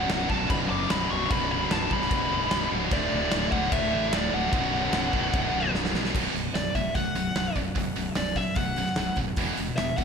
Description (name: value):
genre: heavy metal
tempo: 149 BPM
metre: 4/4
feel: straight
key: B minor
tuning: A4 = 440 Hz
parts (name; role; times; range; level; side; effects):
- high-gain lead guitar; melody; 0.0-10.0 s; D5 to D6; -30 LUFS; left 2 dB; distortion, digital delay
- fuzz guitar; riff; 0.0-6.1 s; B1 to D4; -34 LUFS; equal; distortion, slapback echo
- heavy high-gain guitar; riff; 0.0-10.0 s; B1 to E3; -32 LUFS; left 11 dB; distortion, slapback echo
- heavy high-gain guitar; riff; 0.0-10.0 s; B1 to E3; -31 LUFS; right 11 dB; distortion
- fuzz fingered electric bass; bass; 0.0-10.0 s; B0 to B1; -33 LUFS; equal; overdrive
- big rock drum kit; drums; 0.1-10.0 s; crash cymbal, hi-hat, kick drum, snare drum; -30 LUFS; equal; none
room: moderate recital hall reverb, RT60 1.5 s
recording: big arena sound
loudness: -24 LUFS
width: side -6 dB against mid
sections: 0.0-6.1 A section; 6.1-10.0 B section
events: drum fill 5.7-6.1; lead electric guitar solo 6.1-10.0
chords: 0.0 Bm; 2.9 D; 4.5 Bm; 6.1 B5; 9.4 E5